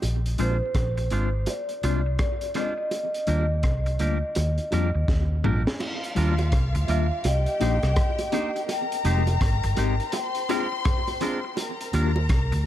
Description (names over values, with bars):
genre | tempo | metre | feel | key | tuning
lovers rock reggae | 83 BPM | 4/4 | swing 62% on 16ths | Eb major | A4 = 435 Hz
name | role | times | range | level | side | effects
vintage muted fingered electric bass | bass | 0.0-12.7 s | F1 to F2 | -24 LUFS | equal | none
crunchy breakbeat drum kit | drums | 0.0-12.6 s | crash cymbal, hi-hat, kick drum, rim click, snare drum, toms | -27 LUFS | equal | none
bongos | percussion | 0.0-12.3 s | none | -35 LUFS | right 4 dB | tape echo
vibraphone with soft mallets | melody | 0.4-11.2 s | C5 to G5 | -30 LUFS | left 1 dB | tape echo
mellow tine electric piano | accompaniment | 0.4-12.1 s | G3 to Ab4 | -31 LUFS | left 4 dB | medium stereo tremolo
twangy electric guitar | stabs | 0.4-12.6 s | G3 to C5 | -35 LUFS | right 2 dB | none
warm studio string section | second line | 5.8-12.7 s | F4 to C6 | -33 LUFS | left 2 dB | tape echo
room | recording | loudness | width
light reverb, small room ambience | none | -22 LUFS | side -12 dB against mid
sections
0.0-5.8 A section; 5.8-12.7 B section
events
drum fill 5.1-5.8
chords
0.0 Bb9; 2.9 Ebmaj7; 5.8 Ebmaj9; 7.2 Cm7; 8.7 Fm9; 10.1 Bb7; 11.6 Ebmaj9